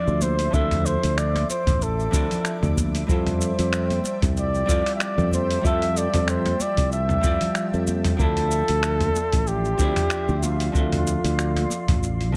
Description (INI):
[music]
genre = sunset chillout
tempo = 94 BPM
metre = 4/4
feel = swing 56% on 16ths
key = unclear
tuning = A4 = 443 Hz
[part]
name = breathy flugelhorn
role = melody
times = 0.0-12.4 s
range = F4 to E5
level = -28 LUFS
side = equal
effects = tape echo
[part]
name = vintage hollow-body jazz guitar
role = accompaniment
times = 0.0-12.4 s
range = F3 to E5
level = -32 LUFS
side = equal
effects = none
[part]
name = shimmering ambient pad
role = sustained chords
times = 0.0-12.4 s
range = F3 to D6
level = -37 LUFS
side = equal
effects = chorus, built-in reverb
[part]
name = sustaining fretless electric bass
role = bass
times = 0.1-12.3 s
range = A1 to F2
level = -27 LUFS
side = equal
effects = none
[part]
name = dusty soul sampler-style drum kit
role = drums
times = 0.1-12.3 s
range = finger snaps, hi-hat, shaker, toms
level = -30 LUFS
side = equal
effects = none
[part]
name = congas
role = percussion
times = 0.1-11.8 s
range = none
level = -34 LUFS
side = equal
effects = none
[part]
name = electronic kick drum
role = drums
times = 0.5-12.0 s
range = none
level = -26 LUFS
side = equal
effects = none
[sound]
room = light reverb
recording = none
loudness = -22 LUFS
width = mono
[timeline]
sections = 0.0-12.4 A section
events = none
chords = 0.0 Dm9; 3.1 Fmaj9; 8.2 Dm9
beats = | 0.54 1.18 1.81 2.45 | 3.09 3.73 4.37 5.00 | 5.64 6.28 6.92 7.56 | 8.20 8.84 9.47 10.11 | 10.75 11.39 12.03